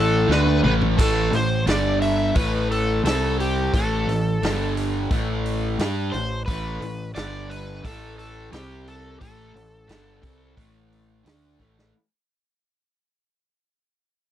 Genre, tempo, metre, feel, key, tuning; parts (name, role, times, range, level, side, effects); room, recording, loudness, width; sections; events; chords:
blues rock power trio and southern rock; 88 BPM; 4/4; straight; A minor; A4 = 440 Hz
overdriven slide guitar; melody; 0.0-10.5 s; G4 to E5; -26 LUFS; left 1 dB
raw garage guitar; riff; 0.0-11.9 s; G2 to G4; -25 LUFS; right 1 dB; overdrive
growling picked electric bass; bass; 0.0-11.9 s; G1 to G2; -26 LUFS; equal; overdrive
vintage drum kit; drums; 0.3-11.9 s; crash cymbal, hi-hat, kick drum, snare drum, toms; -25 LUFS; equal
little or no reverb; dry, close 1970s-style studio recording; -20 LUFS; side -11 dB against mid
0.0-11.9 A section
fade-out 0.0-11.9; drum fill 0.3-1.0, 11.6-11.9
0.0 A5; 1.7 G5; 2.4 A5; 3.0 C5; 3.7 A5; 4.4 G5; 5.1 A5; 7.2 G5; 7.8 A5; 8.5 C5; 9.2 Am